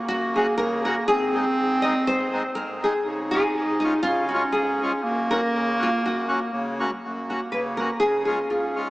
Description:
alpine folk, alpine dance band; 121 BPM; 2/4; swing 54% on 8ths, rubato; F# major; A4 = 440 Hz
mellow clarinet; second line; 0.0-8.9 s; A#3 to D#4; -26 LUFS; right 1 dB; tape echo
nylon-string guitar; melody; 0.1-8.9 s; D#4 to D#5; -24 LUFS; equal; lush chorus, tape echo
accordion; accompaniment; 0.1-8.9 s; F#2 to F#4; -28 LUFS; left 1 dB
wet cathedral reverb, RT60 5.0 s; dreamy mix soaked in reverb, small speaker sound; -21 LUFS; side -19 dB against mid
0.0-7.0 A section; 7.0-8.9 B section
0.0 F#; 1.1 G#; 3.1 C#; 5.0 F#; 8.0 C#

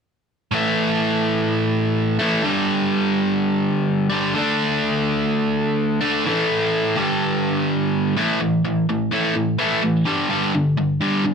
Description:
rock; 126 BPM; 4/4; straight; A4 = 440 Hz
biting overdriven guitar; solo; 0.5-11.3 s; G2 to D4; -18 LUFS; equal
wet studio reverb, RT60 0.6 s; -18 LUFS; side -6 dB against mid
0.5-8.2 A section; 8.2-11.3 B section
0.5 A5; 2.4 G5; 4.4 D5; 6.3 A5; 7.0 G5; 8.2 A5; 10.1 G5

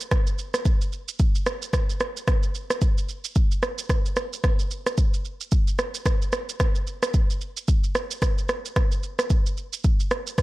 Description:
afrobeats; 111 BPM; 4/4; swing 58% on 16ths
afro-pop drum kit; drums; 0.0-10.4 s; kick drum, rim click, shaker; -22 LUFS; equal
little or no reverb; -22 LUFS; side -19 dB against mid
0.0-10.4 A section

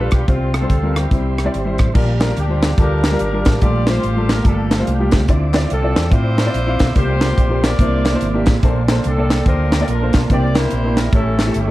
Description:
uptempo gospel; 144 BPM; 4/4; swing 62% on 8ths; A4 = 441 Hz
warm horn section; melody; 0.0-11.7 s; C4 to D5; -24 LUFS; equal
clear grand piano; accompaniment; 0.0-11.7 s; A2 to F5; -22 LUFS; left 1 dB
tonewheel organ; sustained chords; 0.0-11.7 s; A3 to D6; -26 LUFS; right 3 dB; slow rotary speaker, chorus vibrato
fingered electric bass; bass; 0.0-11.7 s; G1 to A2; -19 LUFS; equal
crisp fusion drum kit; drums; 0.1-11.7 s; crash cymbal, hi-hat, kick drum, rim click, snare drum; -17 LUFS; equal
group handclap; percussion; 2.2-11.5 s; -32 LUFS; left 8 dB
light reverb, studio ambience; dark, warm production, vinyl crackle; -14 LUFS; side -16 dB against mid
0.0-1.9 A section; 1.9-11.7 B section
0.3 Csus4; 1.1 C; 1.9 Bb6; 3.6 Gm9; 5.3 Dm9; 7.0 C7sus4; 7.8 C9; 8.6 Bbmaj9; 10.3 C9; 11.1 A7

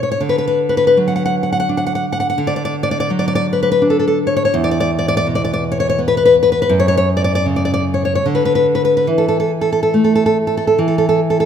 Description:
romantic piece for solo classical guitar; 70-86 BPM; 3/4; rubato; A4 = 438 Hz
nylon-string guitar; solo; 0.0-11.5 s; E2 to F#5; -13 LUFS; left 1 dB
moderate concert hall reverb, RT60 2.1 s; minimal, uncompressed stereo recording; -13 LUFS; side -8 dB against mid
0.0-11.5 A section
0.2 D; 4.5 E5; 6.7 F#5; 8.2 N.C.; 9.1 Esus4; 10.8 N.C.

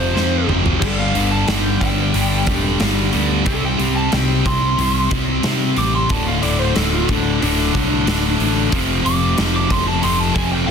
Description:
hard rock; 91 BPM; 4/4; straight; A4 = 439 Hz
lead guitar through a small cranked amp; melody; 0.0-10.7 s; D4 to D6; -23 LUFS; left 1 dB; overdrive, digital delay
cranked stack guitar; riff; 0.0-10.7 s; D2 to C4; -22 LUFS; left 12 dB; overdrive
distorted electric guitar; riff; 0.0-10.7 s; D2 to C4; -22 LUFS; right 15 dB; overdrive
modern bright picked electric bass; bass; 0.0-10.7 s; D1 to C3; -22 LUFS; equal
big rock drum kit; drums; 0.2-10.5 s; crash cymbal, hi-hat, kick drum, snare drum, toms; -22 LUFS; equal; soft clipping on kick
distorted electric guitar; riff; 0.8-10.7 s; D2 to C5; -24 LUFS; equal; distortion
studio reverb; dense, heavily limited modern master; -15 LUFS; side -6 dB against mid
0.0-10.7 A section
lead electric guitar solo 0.0-10.7; drum fill 0.2-0.8
0.0 F5; 0.8 G; 3.5 C; 6.1 D; 8.7 F

